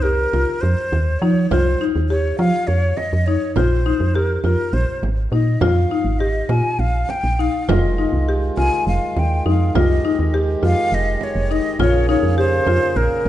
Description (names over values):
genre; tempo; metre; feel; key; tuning
contemporary instrumental, chamber music in an uneven meter; 204 BPM (eighths); 7/8; straight; F minor; A4 = 443 Hz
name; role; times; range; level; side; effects
breathy hollow jazz flute; melody; 0.0-13.3 s; Bb4 to Ab5; -23 LUFS; equal; none
buzzing marimba with medium hard mallets; arpeggios; 0.0-13.1 s; Eb4 to G4; -22 LUFS; left 4 dB; none
woody FM bass; bass; 0.0-13.3 s; F1 to F3; -19 LUFS; right 1 dB; none
frame drum; percussion; 0.3-13.3 s; none; -26 LUFS; right 5 dB; none
hand-pumped harmonium; sustained chords; 7.7-13.3 s; Db3 to Ab4; -26 LUFS; right 2 dB; none
room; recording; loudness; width
moderate recital hall reverb, RT60 1.6 s; dark, warm production, nothing above 10.6 kHz; -16 LUFS; side -13 dB against mid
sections
0.0-13.3 A section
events
none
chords
0.0 F5; 3.6 Bb5; 7.7 Fm7; 11.8 Bbm7